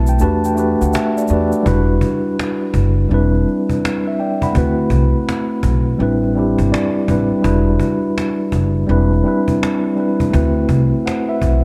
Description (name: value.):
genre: lo-fi hip hop.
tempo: 83 BPM.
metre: 4/4.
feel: swing 66% on 16ths.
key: E minor.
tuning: A4 = 440 Hz.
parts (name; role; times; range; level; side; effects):
mellow tine electric piano; accompaniment; 0.0-11.6 s; G3 to B5; -19 LUFS; equal; cassette tape.
upright bass; bass; 0.0-11.6 s; E1 to E2; -18 LUFS; equal; none.
egg shaker; percussion; 0.1-1.6 s; none; -40 LUFS; equal; none.
cajon; drums; 0.2-11.6 s; none; -26 LUFS; equal; none.
room: light reverb, small room ambience.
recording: dark, warm production.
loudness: -16 LUFS.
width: mono.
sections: 0.0-1.7 A section; 1.7-11.6 A section.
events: tine electric piano fill 0.0-1.7; kick muted 0.2-1.7.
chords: 0.2 Em11; 1.7 Em9; 3.1 Cmaj7/E; 4.5 D13; 6.0 Am11; 7.4 Em9; 8.9 Cmaj7/E; 10.3 D13.